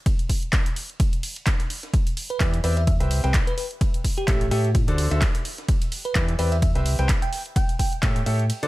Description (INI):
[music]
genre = piano house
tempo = 128 BPM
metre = 4/4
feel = swing 56% on 16ths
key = unclear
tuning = A4 = 440 Hz
[part]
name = breakbeat sampler-style drum kit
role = drums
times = 0.1-8.6 s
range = hi-hat, ride cymbal, snare drum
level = -39 LUFS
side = right 2 dB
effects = sidechain pumping on hats, high-pass filter on hats, studio reverb, sidechain pumping on cymbals, high-pass filter on cymbals, high-pass filter on snare, high-pass filter on room
[part]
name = electronic kick drum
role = drums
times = 0.1-8.1 s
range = none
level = -22 LUFS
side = equal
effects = overdrive, studio reverb
[part]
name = punchy analog drum machine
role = drums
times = 0.1-8.7 s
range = handclaps, hi-hat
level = -30 LUFS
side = equal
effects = overdrive, studio reverb
[part]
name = bell-like FM electric piano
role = melody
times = 2.3-8.5 s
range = G4 to G5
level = -31 LUFS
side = right 1 dB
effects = chorus, dub echo
[part]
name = bright upright piano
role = riff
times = 2.4-8.7 s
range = D3 to G5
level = -30 LUFS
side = equal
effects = sidechain pumping, dub echo
[part]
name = fingered electric bass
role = bass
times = 2.4-8.5 s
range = A1 to A2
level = -22 LUFS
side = equal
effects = sidechain pumping
[sound]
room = digital ambience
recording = none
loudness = -20 LUFS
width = side -18 dB against mid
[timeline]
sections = 0.0-8.7 A section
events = break 8.5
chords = 0.0 N.C.; 1.9 Em7; 2.9 Cmaj7; 3.8 A7; 4.7 D7; 5.7 Em7; 6.6 Cmaj7; 7.6 A7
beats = | 0.06 0.53 1.00 1.47 | 1.94 2.40 2.87 3.34 | 3.81 4.28 4.75 5.22 | 5.69 6.15 6.62 7.09 | 7.56 8.03 8.50